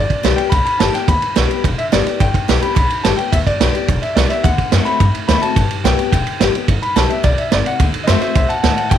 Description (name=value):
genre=rockabilly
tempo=214 BPM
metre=4/4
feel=straight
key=G major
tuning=A4 = 437 Hz
part: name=bright upright piano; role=melody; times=0.0-9.0 s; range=C5 to B5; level=-20 LUFS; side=left 2 dB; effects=none
part: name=picked steel-string acoustic guitar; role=accompaniment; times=0.0-9.0 s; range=G2 to G4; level=-22 LUFS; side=left 13 dB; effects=none
part: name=upright bass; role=bass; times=0.0-9.0 s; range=E1 to G2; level=-18 LUFS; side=left 1 dB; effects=none
part: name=vintage drum kit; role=drums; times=0.1-9.0 s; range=kick drum, ride cymbal, snare drum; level=-17 LUFS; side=right 5 dB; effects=none
room=small room ambience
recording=1960s-style stereo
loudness=-13 LUFS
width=side -10 dB against mid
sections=0.0-6.7 A section; 6.7-9.0 B section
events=upright piano solo 6.7-9.0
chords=0.0 G; 4.4 D7; 5.6 G; 7.8 D7